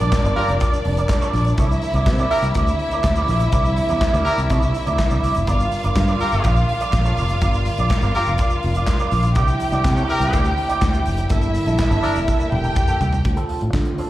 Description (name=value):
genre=disco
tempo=123 BPM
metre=4/4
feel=straight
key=G dorian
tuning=A4 = 439 Hz
part: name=warm symphonic violin section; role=second line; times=0.0-13.2 s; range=D4 to G5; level=-24 LUFS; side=equal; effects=plate reverb, slapback echo
part: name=electric guitar with an envelope filter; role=accompaniment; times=0.0-14.1 s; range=Bb3 to D5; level=-26 LUFS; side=right 3 dB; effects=analog chorus, plate reverb, slapback echo
part: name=mellow French horn section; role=sustained chords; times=0.0-14.1 s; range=C3 to Bb4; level=-29 LUFS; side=equal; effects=plate reverb
part: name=fingered electric bass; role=bass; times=0.0-13.9 s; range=E1 to D3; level=-20 LUFS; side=equal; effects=none
part: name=tube shaker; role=percussion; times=0.0-13.2 s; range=none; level=-44 LUFS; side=left 2 dB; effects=none
part: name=modern studio drum kit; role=drums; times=0.1-14.1 s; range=handclaps, hi-hat, kick drum, snare drum, toms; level=-22 LUFS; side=equal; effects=none
part: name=clear horn section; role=stabs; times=0.4-12.2 s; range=D4 to Bb4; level=-23 LUFS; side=left 1 dB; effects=plate reverb, slapback echo
room=light reverb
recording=live gig heard through the venue's PA, recital hall reverb, vinyl crackle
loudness=-16 LUFS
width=side -15 dB against mid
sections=0.0-13.3 A section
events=drum fill 12.3-13.3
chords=0.0 Gm7; 1.6 C9; 5.5 Gm7; 9.4 C9; 11.3 Gm69; 13.3 Dm7